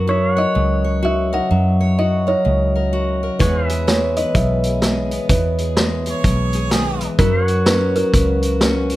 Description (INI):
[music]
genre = honky-tonk and classic country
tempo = 127 BPM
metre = 4/4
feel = swing 62% on 8ths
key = unclear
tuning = A4 = 440 Hz
[part]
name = kalimba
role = melody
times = 0.0-9.0 s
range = A#4 to F#5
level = -20 LUFS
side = right 1 dB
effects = none
[part]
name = picked steel-string acoustic guitar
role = accompaniment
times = 0.0-9.0 s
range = B2 to C#5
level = -23 LUFS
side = left 3 dB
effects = none
[part]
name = vintage muted fingered electric bass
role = bass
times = 0.0-9.0 s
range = B1 to F#2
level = -20 LUFS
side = equal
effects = none
[part]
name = pedal steel guitar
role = sustained chords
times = 0.1-9.0 s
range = B4 to F#5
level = -28 LUFS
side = right 1 dB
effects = none
[part]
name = vintage drum kit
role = drums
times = 3.4-9.0 s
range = hi-hat, kick drum, snare drum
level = -19 LUFS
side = equal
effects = none
[part]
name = clear harmonica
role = second line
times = 6.1-7.1 s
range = G#4 to C#5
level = -25 LUFS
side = right 5 dB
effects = none
[sound]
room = light reverb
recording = none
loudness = -15 LUFS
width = side -16 dB against mid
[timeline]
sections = 0.0-9.0 A section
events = none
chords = 0.0 F#; 3.4 E; 7.2 F#